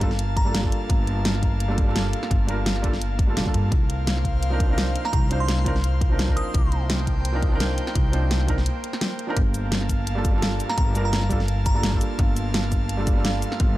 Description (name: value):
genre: liquid drum and bass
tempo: 170 BPM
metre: 4/4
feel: swing 54% on 16ths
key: C dorian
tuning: A4 = 439 Hz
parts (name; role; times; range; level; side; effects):
- felt-muted upright piano; accompaniment; 0.0-13.8 s; F3 to C5; -30 LUFS; right 2 dB; digital delay
- airy breathy pad; sustained chords; 0.0-13.8 s; Bb3 to A5; -33 LUFS; right 1 dB; chorus, sidechain pumping
- upright bass; bass; 0.0-13.8 s; G1 to G2; -24 LUFS; equal; none
- electronic kick drum; drums; 0.0-13.7 s; none; -23 LUFS; equal; none
- pop drum kit; drums; 0.0-13.7 s; cabasa, hi-hat, snare drum; -27 LUFS; equal; none
- glassy synth bell; melody; 0.4-0.5, 5.1-6.7, 10.7-11.8 s; Bb5 to Eb6; -34 LUFS; right 2 dB; chorus, dub echo
room: digital ambience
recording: dark, warm production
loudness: -20 LUFS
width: side -16 dB against mid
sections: 0.0-13.8 A section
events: break 8.7-9.4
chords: 0.0 Gm9; 3.7 Cm11; 9.4 Gm9